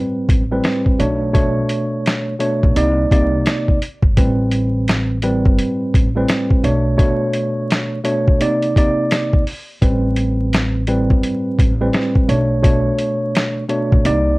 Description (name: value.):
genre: hip hop, boom-bap hip-hop.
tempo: 85 BPM.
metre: 4/4.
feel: swing 62% on 16ths.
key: unclear.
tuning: A4 = 440 Hz.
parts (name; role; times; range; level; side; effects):
mellow tine electric piano; accompaniment; 0.0-14.4 s; A2 to D5; -18 LUFS; equal; medium stereo tremolo, cassette tape, high-pass filter, low-pass filter.
upright bass; bass; 0.3-14.4 s; G1 to C2; -20 LUFS; equal; none.
boom bap sampler-style drum kit; drums; 0.3-14.3 s; hi-hat, kick drum, snare drum; -16 LUFS; equal; none.
room: moderate studio reverb, RT60 0.6 s.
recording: worn, warbling old tape, cassette tape, vinyl crackle, warbly pitch drift.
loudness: -14 LUFS.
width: side -23 dB against mid.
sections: 0.0-14.4 A section.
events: none.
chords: 0.0 Am9; 1.0 Bm9; 2.8 Cm9; 4.2 Am9; 6.6 Bm9; 8.4 Cm9; 9.8 Am9; 12.3 Bm9.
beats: 0.64 | 1.35 2.05 2.76 3.47 | 4.17 4.88 5.58 6.29 | 7.00 7.70 8.41 9.11 | 9.82 10.52 11.23 11.94 | 12.64 13.35 14.05.